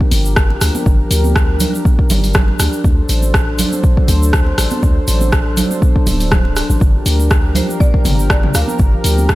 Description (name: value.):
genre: afro house.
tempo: 121 BPM.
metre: 4/4.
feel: swing 55% on 16ths.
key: G minor.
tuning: A4 = 440 Hz.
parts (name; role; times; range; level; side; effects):
warm analog pad; sustained chords; 0.0-9.3 s; F3 to C5; -21 LUFS; left 1 dB; chorus, sidechain pumping.
electronic kick drum; drums; 0.0-9.3 s; none; -13 LUFS; equal; none.
warm 808-style bass; bass; 0.1-9.3 s; D1 to D2; -16 LUFS; equal; tube saturation, sidechain pumping.
deep house drum kit; drums; 0.1-9.3 s; hi-hat, rim click, toms; -19 LUFS; equal; none.
congas; percussion; 0.1-9.3 s; none; -23 LUFS; right 4 dB; none.
egg shaker; percussion; 0.1-9.3 s; none; -27 LUFS; right 2 dB; none.
buzzing marimba with hard mallets; melody; 7.6-9.3 s; C5 to F5; -26 LUFS; equal; diffuse ambient delay.
room: digital ambience.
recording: none.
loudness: -11 LUFS.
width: side -17 dB against mid.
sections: 0.0-9.3 A section.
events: none.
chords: 0.0 Gm7; 2.8 D7; 6.8 Gm7.